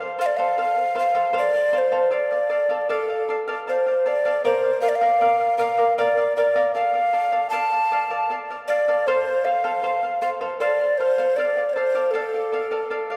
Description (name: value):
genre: andean folk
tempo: 78 BPM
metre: 3/4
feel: straight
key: D minor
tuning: A4 = 440 Hz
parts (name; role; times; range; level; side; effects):
- charango; accompaniment; 0.0-13.2 s; A4 to F5; -28 LUFS; equal; none
- breathy mellow tenor recorder; melody; 0.2-13.2 s; A4 to A5; -23 LUFS; equal; none
room: wet scoring stage reverb, RT60 1.9 s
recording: recorded in a church or concert hall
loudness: -22 LUFS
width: mono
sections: 0.0-13.2 A section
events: none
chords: 0.0 F; 2.1 Dm; 4.4 Bb; 6.7 Dm; 9.1 F; 11.4 Dm